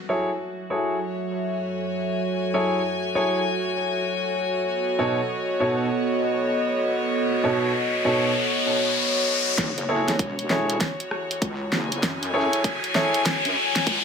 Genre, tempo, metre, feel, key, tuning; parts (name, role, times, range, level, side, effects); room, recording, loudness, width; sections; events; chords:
glitch hop; 98 BPM; 4/4; swing 64% on 16ths; F# dorian; A4 = 439 Hz
dark analog pad; sustained chords; 0.0-14.0 s; F#3 to E5; -28 LUFS; right 2 dB; chorus, phaser, sidechain pumping
rich chamber string section; texture; 0.0-14.0 s; B3 to G#5; -27 LUFS; left 2 dB; sidechain pumping
warm grand piano; stabs; 0.1-13.2 s; B2 to C#5; -26 LUFS; equal; vintage 12-bit sampler grit, sidechain pumping, low-pass filter, digital delay
riser; sound effects; 6.4-14.0 s; -27 LUFS; left 2 dB
wobble bass; bass; 9.6-14.0 s; E1 to F#2; -30 LUFS; equal; chorus, tube saturation, high-pass filter
electronic kick drum; drums; 9.6-14.0 s; -29 LUFS; equal; high-pass filter on kick, high-pass filter on room
pop drum kit; drums; 9.6-14.0 s; hi-hat, rim click, snare drum; -27 LUFS; equal; low-pass filter on hats, low-pass filter on snare, low-pass filter on room
wet plate reverb, RT60 2.5 s; high-pass filter; -21 LUFS; side -6 dB against mid
0.0-9.6 A section; 9.6-14.0 B section
riser 6.4-9.6, 9.6-14.0; build-up 9.6-14.0; drum fill 9.6-14.0; filter sweep 9.6-14.0
0.0 F#m7; 4.7 B7; 9.6 F#m7